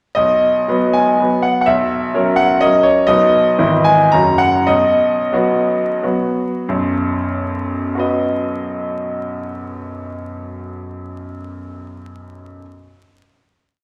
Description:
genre	classical, romantic triple-time dance for piano with dotted rhythms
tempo	85-132 BPM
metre	3/4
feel	rubato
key	B major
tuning	A4 = 440 Hz
part	bright grand piano	solo	0.1-12.6 s	F#1 to A#5	-17 LUFS	equal	none
room	wet recital hall reverb, RT60 1.4 s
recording	vinyl crackle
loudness	-15 LUFS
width	mono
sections	0.2-6.7 A section; 6.7-10.5 final chord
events	slowing down 2.4-6.7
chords	0.2 B; 1.7 F#7/B; 3.1 B; 3.6 E/G#; 4.1 F#; 4.7 B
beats	| 0.16 0.69 1.19 | 1.67 2.14 2.61 | 3.07 3.59 4.13 | 4.68 5.33 6.03 | 6.69 7.31 7.96 | 8.57 9.22 9.87

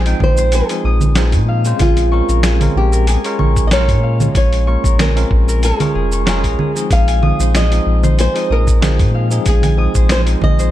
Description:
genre	sunset chillout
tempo	94 BPM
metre	4/4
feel	swing 54% on 16ths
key	Bb minor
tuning	A4 = 435 Hz
part	barky tine electric piano	accompaniment	0.0-10.7 s	F3 to G5	-22 LUFS	moving between left 4 dB and right 5 dB	fast stereo tremolo, auto-pan, digital delay
part	Celtic harp	arpeggios	0.0-10.7 s	Ab4 to Eb6	-25 LUFS	left 5 dB	digital delay
part	warm sub bass	bass	0.0-10.7 s	F1 to Bb2	-14 LUFS	equal	none
part	dusty soul sampler-style drum kit	drums	0.1-10.7 s	congas, hi-hat, shaker, snare drum	-20 LUFS	right 2 dB	none
part	flamenco guitar	melody	0.2-10.7 s	F4 to F5	-20 LUFS	right 1 dB	tape echo
part	electronic kick drum	drums	0.2-10.6 s	none	-16 LUFS	equal	none
room	digital ambience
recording	dark, warm production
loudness	-12 LUFS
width	side -13 dB against mid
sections	0.0-10.7 A section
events	none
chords	0.0 Fm7/Bb; 1.8 Bbm7; 6.9 Fm7/Bb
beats	0.52 1.16 | 1.80 2.44 3.08 3.71 | 4.35 4.99 5.63 6.27 | 6.91 7.54 8.18 8.82 | 9.46 10.10

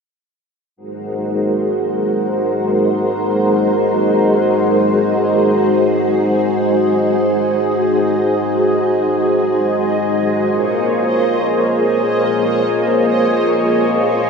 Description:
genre	ambient, sequencer-driven space music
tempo	free time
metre	none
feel	none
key	unclear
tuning	A4 = 440 Hz
part	string machine, full ensemble	sustained chords	0.8-14.3 s	Ab3 to Db5	-14 LUFS	equal	ensemble chorus
part	bubbling stepped-filter texture	texture	0.8-14.3 s	Eb5	-26 LUFS	right 1 dB	chorus, built-in reverb
room	wet spring reverb, RT60 2.5 s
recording	none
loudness	-13 LUFS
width	side -5 dB against mid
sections	0.8-14.3 A section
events	fade-in on synth texture 0.8-14.3; filter sweep on string machine 0.8-14.3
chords	0.8 Ab7; 10.5 Bbm7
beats	free time

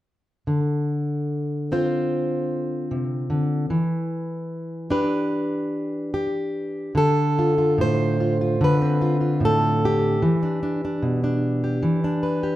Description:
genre	folk, solo fingerstyle acoustic guitar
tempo	74 BPM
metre	4/4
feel	rubato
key	D dorian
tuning	A4 = 440 Hz
part	fingerpicked plugged-in steel-string acoustic guitar	solo	0.5-12.6 s	A2 to C5	-20 LUFS	equal	slapback echo
room	light reverb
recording	dark, warm production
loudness	-20 LUFS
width	side -14 dB against mid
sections	0.5-7.0 A section; 7.0-12.6 B section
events	none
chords	0.5 Dm7; 3.7 Em7; 7.0 Dm7; 10.2 Em7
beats	| 0.47 1.30 2.10 2.90 | 3.70 4.50 5.31 6.14 | 6.97 7.80 8.61 9.42 | 10.22 11.02 11.83

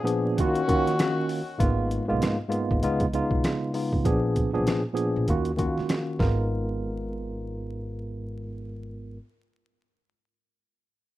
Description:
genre	hip hop, boom-bap hip-hop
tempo	98 BPM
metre	4/4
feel	swing 60% on 16ths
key	G# dorian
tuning	A4 = 439 Hz
part	mellow tine electric piano	accompaniment	0.0-9.2 s	G#2 to A#4	-26 LUFS	equal	slow stereo tremolo, low-pass filter
part	clear horn section	stabs	0.0-1.3 s	D#3 to F#4	-29 LUFS	left 2 dB	digital delay, plate reverb
part	boom bap sampler-style drum kit	drums	0.1-6.4 s	hi-hat, kick drum, rim click, snare drum	-27 LUFS	equal	none
part	upright bass	bass	1.6-9.2 s	G#1 to D#2	-31 LUFS	equal	none
room	moderate studio reverb, RT60 0.6 s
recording	rough home demo mix, vinyl crackle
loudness	-23 LUFS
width	side -15 dB against mid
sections	0.0-1.6 A section; 1.6-6.5 B section; 6.5-8.9 C section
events	break 0.0-1.6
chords	0.4 D#m7; 1.6 G#m69; 2.8 C#7; 4.1 A#7b9; 5.3 D#m7; 6.2 G#m69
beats	0.38 0.99 | 1.60 2.21 2.83 3.44 | 4.05 4.66 5.28 5.89 | 6.50 7.11 7.72 8.34

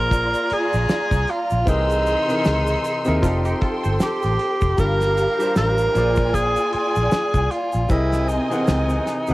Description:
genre	lush 1970s-style soul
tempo	77 BPM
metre	4/4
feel	swing 58% on 16ths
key	unclear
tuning	A4 = 440 Hz
part	breathy tenor saxophone	melody	0.0-9.3 s	D#4 to Bb4	-22 LUFS	right 1 dB	cassette tape
part	warm studio string section	second line	0.0-9.3 s	C4 to E6	-27 LUFS	equal	none
part	clear baby grand piano	accompaniment	0.0-9.3 s	C3 to F#5	-26 LUFS	left 1 dB	none
part	vintage muted fingered electric bass	bass	0.0-9.3 s	F1 to D#2	-22 LUFS	equal	none
part	worn celesta	texture	0.0-8.2 s	G#4 to D6	-38 LUFS	equal	none
part	damped 70s drum kit	drums	0.1-9.3 s	hi-hat, kick drum, snare drum	-23 LUFS	equal	cassette tape
part	egg shaker	percussion	0.1-9.3 s	none	-46 LUFS	right 4 dB	none
part	direct-recorded clean electric guitar	riff	3.2-4.7 s	D4 to C5	-32 LUFS	right 2 dB	lush chorus
room	small room reverb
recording	home recording on cassette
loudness	-18 LUFS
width	side -18 dB against mid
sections	0.0-9.3 A section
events	none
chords	0.0 Bb9; 1.7 C7alt; 3.2 F9; 4.8 Gm7; 5.9 Bb9; 7.9 C7alt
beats	0.12 0.89 | 1.67 2.45 3.23 4.00 | 4.78 5.56 6.34 7.12 | 7.89 8.67

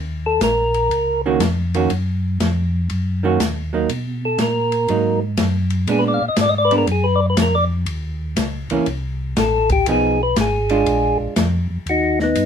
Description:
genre	soul jazz organ trio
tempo	121 BPM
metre	4/4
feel	swing 67% on 8ths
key	Eb minor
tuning	A4 = 440 Hz
part	mellow tonewheel organ	bass	0.0-12.5 s	Ab1 to B2	-21 LUFS	equal	chorus vibrato, slow rotary speaker
part	percussive tonewheel organ	melody	0.3-1.2, 4.3-12.5 s	Cb4 to F5	-18 LUFS	left 1 dB	slow rotary speaker
part	open jazz drum kit	drums	0.4-12.5 s	hi-hat, kick drum, ride cymbal, snare drum	-24 LUFS	left 2 dB	none
part	vintage hollow-body jazz guitar	accompaniment	1.3-11.3 s	Eb3 to Ab4	-19 LUFS	right 5 dB	none
room	light reverb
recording	minimal, uncompressed stereo recording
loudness	-16 LUFS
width	side -8 dB against mid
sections	0.0-11.9 A section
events	tonewheel organ solo 0.0-11.9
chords	0.0 Ebm7; 3.9 Bmaj7; 5.9 Bb7b9; 7.9 Eb5; 8.9 Am7; 9.9 Fm7b5; 10.9 Bb7; 11.9 Ebm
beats	0.41 0.91 1.41 | 1.91 2.40 2.90 3.40 | 3.90 4.39 4.89 5.39 | 5.88 6.38 6.88 7.38 | 7.87 8.37 8.87 9.37 | 9.87 10.36 10.86 11.36 | 11.86 12.36

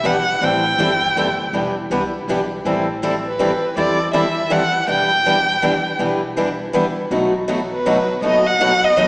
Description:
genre	acoustic string swing (jazz manouche)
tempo	161 BPM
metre	3/4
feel	swing 60% on 8ths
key	E minor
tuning	A4 = 441 Hz
part	dark violin	melody	0.0-9.1 s	B4 to G5	-17 LUFS	equal	none
part	picked steel-string acoustic guitar	accompaniment	0.0-9.1 s	B2 to B4	-24 LUFS	equal	none
part	picked swing-style acoustic guitar	accompaniment	0.0-9.1 s	B2 to A4	-19 LUFS	equal	none
part	upright bass	bass	0.0-9.1 s	E1 to E2	-33 LUFS	equal	none
room	wet concert hall reverb, RT60 2.0 s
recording	recorded in a church or concert hall, small speaker sound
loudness	-15 LUFS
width	side -28 dB against mid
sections	0.0-9.1 A section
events	none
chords	0.4 Am7; 1.5 Em7; 2.6 Am7; 4.9 Em7; 7.1 B7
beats	0.04 | 0.41 0.79 1.16 | 1.53 1.90 2.27 | 2.65 3.02 3.39 | 3.76 4.13 4.51 | 4.88 5.25 5.62 | 5.99 6.37 6.74 | 7.11 7.48 7.85 | 8.22 8.60 8.97

